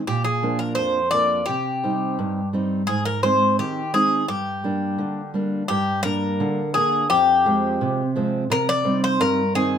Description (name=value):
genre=greek folk, Greek bouzouki band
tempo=86 BPM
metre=2/4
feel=straight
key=G phrygian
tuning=A4 = 441 Hz
part: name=fingerpicked steel-string acoustic guitar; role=accompaniment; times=0.0-9.8 s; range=F2 to Eb4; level=-23 LUFS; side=right 2 dB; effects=none
part: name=Greek bouzouki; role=melody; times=0.1-9.8 s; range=G4 to D5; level=-21 LUFS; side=left 2 dB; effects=none
room=moderate small room reverb, RT60 0.5 s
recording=none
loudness=-19 LUFS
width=side -8 dB against mid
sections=0.0-5.7 A section; 5.7-9.8 A section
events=none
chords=0.1 Bb; 1.5 Cm; 2.9 Ab; 4.3 Gm; 7.1 Fm; 8.5 Cm